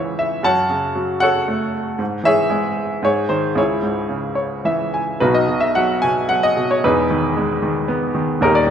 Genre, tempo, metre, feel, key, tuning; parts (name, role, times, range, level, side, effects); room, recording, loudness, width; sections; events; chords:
classical, lyrical solo piano; 113 BPM; 3/4; uneven beats, rubato; A4 = 440 Hz
clear baby grand piano; solo; 0.0-8.7 s; D#1 to A5; -16 LUFS; equal
moderate scoring stage reverb, RT60 2.0 s; -16 LUFS; side -8 dB against mid
0.0-5.2 A section; 5.2-8.7 B section
grand piano fill 4.1-5.2
0.4 F#m; 2.0 C#m/G#; 3.0 G#; 3.6 C#m; 5.2 B; 6.8 Emaj7